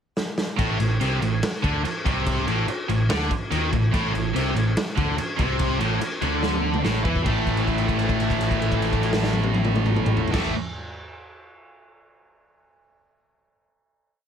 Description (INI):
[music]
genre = hard rock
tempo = 144 BPM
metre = 4/4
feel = straight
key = unclear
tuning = A4 = 440 Hz
[part]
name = raw garage drum kit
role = drums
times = 0.2-10.4 s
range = crash cymbal, kick drum, snare drum, toms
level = -26 LUFS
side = equal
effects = none
[part]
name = distorted electric guitar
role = riff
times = 0.6-10.5 s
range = A2 to A3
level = -28 LUFS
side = left 12 dB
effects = overdrive
[part]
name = scooped high-gain guitar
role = riff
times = 0.6-10.5 s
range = A2 to A3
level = -27 LUFS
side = right 8 dB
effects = distortion
[part]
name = picked electric bass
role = bass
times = 0.6-10.5 s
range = A1 to E2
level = -26 LUFS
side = equal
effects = none
[part]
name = sludgy distorted guitar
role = riff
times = 3.9-10.5 s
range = A2 to A3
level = -28 LUFS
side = right 1 dB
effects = overdrive
[sound]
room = little or no reverb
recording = none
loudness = -20 LUFS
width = side -8 dB against mid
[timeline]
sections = 0.0-0.6 pickup bar; 0.6-7.3 riff; 7.3-10.6 final chord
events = drum fill 0.2-0.6, 6.4-7.3; held note 7.3-10.3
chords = 0.0 N.C.; 0.6 A5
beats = 0.16 | 0.58 1.00 1.43 1.84 | 2.27 2.68 3.10 3.52 | 3.94 4.36 4.77 5.19 | 5.60 6.02 6.43 6.84 | 7.26 7.67 8.09 8.51 | 8.92 9.34 9.75 10.17